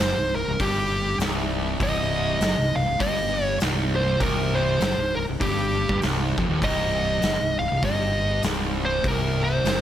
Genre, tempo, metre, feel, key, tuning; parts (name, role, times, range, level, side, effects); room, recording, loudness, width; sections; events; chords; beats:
stoner and doom metal; 99 BPM; 4/4; swing 60% on 8ths; C minor; A4 = 440 Hz
fuzz lead guitar; melody; 0.0-9.8 s; G4 to F5; -25 LUFS; equal; distortion, slapback echo
fuzz guitar; riff; 0.0-9.8 s; C2 to G2; -26 LUFS; equal; distortion
overdriven fingered electric bass; bass; 0.0-9.8 s; C1 to G1; -30 LUFS; equal
oversized low-tuned drum kit; drums; 0.0-9.8 s; hi-hat, kick drum, snare drum; -28 LUFS; equal
light reverb, studio reverb; -21 LUFS; side -11 dB against mid
0.0-9.8 A section
0.0 Cm
0.59 1.19 | 1.80 2.40 3.00 3.61 | 4.21 4.81 5.42 6.02 | 6.63 7.23 7.84 8.44 | 9.04 9.65